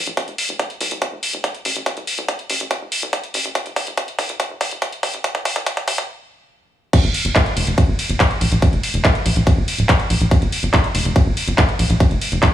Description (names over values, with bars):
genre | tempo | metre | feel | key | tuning
psychedelic trance | 142 BPM | 4/4 | straight | G minor | A4 = 441 Hz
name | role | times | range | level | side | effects
tight sequencer bass | bass | 0.0-12.4 s | D1 to C2 | -20 LUFS | equal | high-pass filter
techno drum kit | drums | 0.1-12.5 s | crash cymbal, handclaps, hi-hat, ride cymbal | -21 LUFS | equal | none
electronic kick drum | drums | 0.2-12.5 s | none | -17 LUFS | equal | high-pass filter on kick
room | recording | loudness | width
light reverb | high-pass filter, studio ambience | -16 LUFS | side -12 dB against mid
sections
0.0-6.9 A section; 6.9-12.5 B section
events
build-up 0.0-6.9; drum fill 0.2-6.1; stop 6.1-6.9; drop 6.9-12.5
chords
none